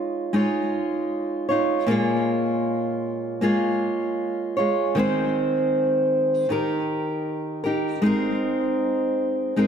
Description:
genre	pop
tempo	78 BPM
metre	4/4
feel	straight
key	Ab major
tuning	A4 = 439 Hz
part	fingerpicked steel-string acoustic guitar	solo	0.0-9.7 s	Bb2 to Db5	-21 LUFS	equal	digital delay
room	moderate recital hall reverb, RT60 1.6 s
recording	none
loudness	-21 LUFS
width	side -7 dB against mid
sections	0.0-9.7 A section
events	none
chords	0.0 Dbadd9/Ab; 1.9 Bbm7; 5.0 Ab/Eb; 6.5 Eb; 8.0 Abadd9

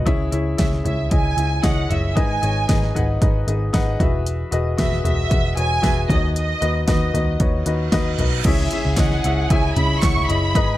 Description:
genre	piano-driven pop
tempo	114 BPM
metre	4/4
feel	straight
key	C# minor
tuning	A4 = 440 Hz
part	warm baby grand piano	accompaniment	0.0-10.8 s	G#2 to F#5	-24 LUFS	left 4 dB	none
part	vintage muted picked electric bass	bass	0.1-10.8 s	E1 to C#3	-22 LUFS	equal	none
part	deep house drum kit	drums	0.1-10.7 s	crash cymbal, hi-hat, kick drum, snare drum, toms	-20 LUFS	equal	none
part	warm symphonic violin section	melody	0.6-10.8 s	D#5 to C#6	-25 LUFS	right 2 dB	none
part	reverse cymbal and impact	sound effects	7.7-10.5 s	none	-32 LUFS	right 2 dB	none
part	warm studio violin section	second line	8.4-10.8 s	E4 to G#5	-32 LUFS	left 1 dB	none
part	group handclap	percussion	9.0-10.1 s	none	-34 LUFS	right 4 dB	none
room	studio reverb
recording	dark, warm production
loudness	-17 LUFS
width	side -15 dB against mid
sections	0.0-8.5 A section; 8.5-10.8 B section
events	reverse cymbal 7.7-8.5; impact 8.5-10.6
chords	0.1 C#m; 2.2 G#m; 4.0 Eadd9; 6.1 B/D#; 8.5 C#m

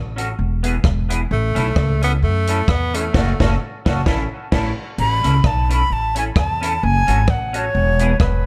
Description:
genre	ska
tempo	130 BPM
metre	4/4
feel	swing 56% on 8ths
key	A major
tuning	A4 = 440 Hz
part	upright bass	bass	0.0-8.5 s	E1 to F#2	-22 LUFS	equal	none
part	clean electric guitar	accompaniment	0.2-8.1 s	B3 to A4	-29 LUFS	equal	analog chorus, dub echo
part	compact cocktail drum kit	drums	0.2-8.3 s	crash cymbal, hi-hat, kick drum, rim click, snare drum	-22 LUFS	equal	none
part	clear tenor saxophone	melody	1.3-3.6 s	A3 to B3	-25 LUFS	equal	none
part	breathy silver concert flute	melody	5.0-8.5 s	B4 to B5	-22 LUFS	equal	dub echo
room	light reverb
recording	dark, warm production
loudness	-18 LUFS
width	mono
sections	0.0-5.0 A section; 5.0-8.5 B section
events	band accent 3.1-5.0; flute solo 5.0-8.5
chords	0.4 E; 1.3 A; 3.1 F#m; 4.1 A; 6.8 F#m; 7.7 E

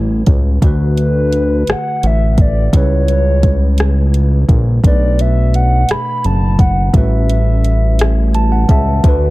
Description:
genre	slow six-eight R&B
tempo	57 BPM (dotted quarters)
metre	6/8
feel	straight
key	unclear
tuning	A4 = 440 Hz
part	tine electric piano	accompaniment	0.0-9.3 s	A2 to A5	-20 LUFS	right 2 dB	dub echo
part	fat analog bass	bass	0.0-9.3 s	F#1 to D2	-13 LUFS	equal	none
part	smooth R&B drum kit	drums	0.3-9.2 s	hi-hat, kick drum, rim click	-13 LUFS	equal	none
part	hollow clarinet-like synth lead	melody	0.7-9.3 s	B4 to B5	-20 LUFS	left 1 dB	chorus, dub echo
room	digital ambience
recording	echo-heavy mix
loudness	-10 LUFS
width	side -19 dB against mid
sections	0.0-9.3 A section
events	tine electric piano fill 8.0-9.0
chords	0.0 A13; 0.6 D6; 2.7 C#m7b5; 4.8 Bm7; 6.9 A13

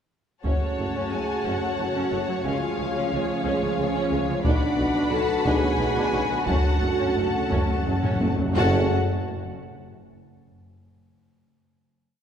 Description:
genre	cinematic, epic orchestral film score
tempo	59 BPM (dotted quarters)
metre	6/8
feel	uneven beats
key	F# harmonic minor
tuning	A4 = 440 Hz
part	clear symphonic violin section	melody	0.4-9.0 s	C#5 to A5	-33 LUFS	left 4 dB	none
part	warm symphonic violin section	second line	0.4-9.0 s	C#5 to B5	-32 LUFS	left 2 dB	none
part	rich symphonic viola section	accompaniment	0.4-8.9 s	E#3 to F#4	-31 LUFS	equal	none
part	mellow French horn section	sustained chords	0.4-8.9 s	C#4 to A4	-29 LUFS	left 1 dB	none
part	mellow trombone section	sustained chords	0.4-8.9 s	C#3 to A3	-33 LUFS	right 2 dB	none
part	rich studio string section	sustained chords	0.4-9.0 s	A3 to F#5	-32 LUFS	left 1 dB	none
part	clear tuba	bass	0.4-8.9 s	F#1 to C#2	-32 LUFS	right 2 dB	none
part	dark symphonic cello section	bass	0.4-9.0 s	F#2 to C#3	-33 LUFS	right 2 dB	none
part	rich symphonic double bass section	bass	0.4-9.0 s	F#1 to C#2	-33 LUFS	right 2 dB	none
part	taiko ensemble	drums	0.4-8.7 s	none	-27 LUFS	equal	none
part	timpani	percussion	6.5-8.9 s	F#2	-32 LUFS	equal	none
room	wet concert hall reverb, RT60 2.2 s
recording	recorded in a church or concert hall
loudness	-21 LUFS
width	side -8 dB against mid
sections	0.4-8.6 theme; 8.6-10.7 final chord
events	timpani fill 6.5-8.6; drum fill 8.0-8.6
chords	0.4 F#m; 2.5 C#; 4.4 Bm; 6.5 F#m

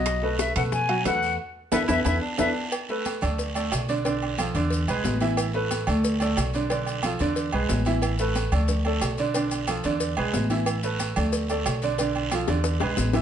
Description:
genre	latin, salsa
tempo	181 BPM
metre	4/4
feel	straight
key	unclear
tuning	A4 = 441 Hz
part	bright reedy concert flute	melody	0.0-2.5 s	D#5 to G#5	-26 LUFS	left 4 dB	none
part	clear upright piano	accompaniment	0.0-13.2 s	D3 to F#5	-27 LUFS	right 3 dB	none
part	upright bass	bass	0.0-13.2 s	A1 to B2	-27 LUFS	equal	none
part	bongos and cowbell	percussion	0.1-13.2 s	none	-33 LUFS	left 4 dB	none
part	congas	percussion	0.1-13.2 s	none	-33 LUFS	left 4 dB	none
part	guiro	percussion	0.1-13.2 s	none	-37 LUFS	right 4 dB	none
part	maracas	percussion	0.1-13.2 s	none	-37 LUFS	left 6 dB	none
part	timbales and agogo bells	percussion	0.1-13.2 s	none	-33 LUFS	right 6 dB	none
part	warm baritone saxophone	second line	1.7-2.7 s	B3 to E4	-32 LUFS	right 4 dB	none
room	moderate large studio reverb, RT60 1.0 s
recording	nothing above 10.7 kHz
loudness	-22 LUFS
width	side -9 dB against mid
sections	0.0-2.7 A section; 2.7-13.2 B section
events	band accent 1.4-2.7; drum fill 12.5-13.2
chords	0.1 B7; 1.4 E7sus4; 2.7 Asus2; 3.4 D5; 4.0 Bm7b5; 4.7 E7; 5.4 Asus2; 6.0 D5; 6.7 Bm7b5; 7.4 E7; 8.0 Asus2; 8.7 D5; 9.3 Bm7b5; 10.0 E7; 10.7 Asus2; 11.3 D5; 12.0 Bm7b5; 12.6 E7

